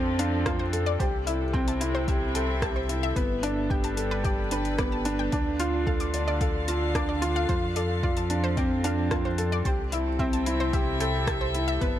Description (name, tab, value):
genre	piano and strings electronica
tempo	111 BPM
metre	4/4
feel	straight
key	unclear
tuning	A4 = 441 Hz
part	warm chamber string section	sustained chords	0.0-12.0 s	C3 to F5	-34 LUFS	left 1 dB	sidechain pumping
part	felt-muted upright piano	riff	0.0-12.0 s	B3 to D5	-28 LUFS	equal	tape echo
part	round analog bass	bass	0.0-12.0 s	G1 to F2	-30 LUFS	equal	sidechain pumping
part	analog pluck	arpeggios	0.2-11.9 s	B4 to D6	-35 LUFS	left 2 dB	chorus, sidechain pumping, tape echo
part	deep house drum kit	drums	0.2-11.9 s	hi-hat, rim click	-35 LUFS	equal	overdrive
part	electronic kick drum	drums	0.5-11.9 s	none	-29 LUFS	equal	overdrive
room	light reverb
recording	none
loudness	-24 LUFS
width	side -11 dB against mid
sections	0.0-12.0 A section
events	none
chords	0.0 F6; 1.0 C6; 3.2 Gadd9; 5.3 Dm; 7.5 F6; 9.7 C6